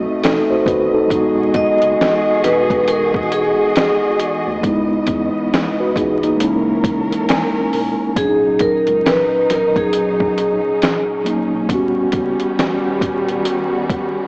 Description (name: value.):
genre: lo-fi hip hop.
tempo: 68 BPM.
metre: 4/4.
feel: swing 61% on 16ths.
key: unclear.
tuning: A4 = 440 Hz.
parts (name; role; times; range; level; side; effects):
mellow tine electric piano; accompaniment; 0.0-14.3 s; A#2 to G#5; -18 LUFS; equal; medium stereo tremolo, cassette tape, low-pass filter.
warm studio string section; sustained chords; 0.0-14.3 s; B2 to D#5; -22 LUFS; equal; low-pass filter.
saturated sub bass; bass; 0.0-13.4 s; D#1 to E2; -29 LUFS; equal; none.
dusty soul sampler-style drum kit; drums; 0.2-14.2 s; finger snaps, hi-hat, kick drum, snare drum; -20 LUFS; equal; vintage 12-bit sampler grit.
vibraphone with hard mallets; melody; 1.6-11.2 s; G#4 to D#5; -16 LUFS; equal; low-pass filter, tape echo.
room: moderate plate reverb, RT60 2.7 s.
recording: worn, warbling old tape, cassette tape, vinyl crackle, warbly pitch drift, small speaker sound.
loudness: -14 LUFS.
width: side -31 dB against mid.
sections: 0.0-14.3 A section.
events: tine electric piano fill 6.8-8.2.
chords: 0.0 B7b9; 1.1 Emaj9; 4.6 C#m9; 6.4 F#7; 8.2 Bmaj7; 11.7 D#7alt.